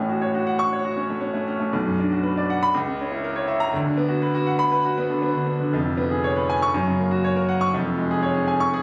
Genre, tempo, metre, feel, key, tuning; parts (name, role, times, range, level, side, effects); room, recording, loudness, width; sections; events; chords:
classical, virtuoso piano study; 120 BPM; 4/4; rubato; A4 = 440 Hz
warm concert grand piano; solo; 0.0-8.8 s; E#1 to C#6; -23 LUFS; equal
moderate recital hall reverb, RT60 1.7 s; recorded on a phone in the room, studio ambience, compression; -23 LUFS; mono
0.0-8.8 A section
0.0 F#m/A; 1.7 Bm; 2.7 A#dim/C#; 3.7 Bm/D; 5.7 C#7/E#; 6.7 F#; 7.7 C#/E#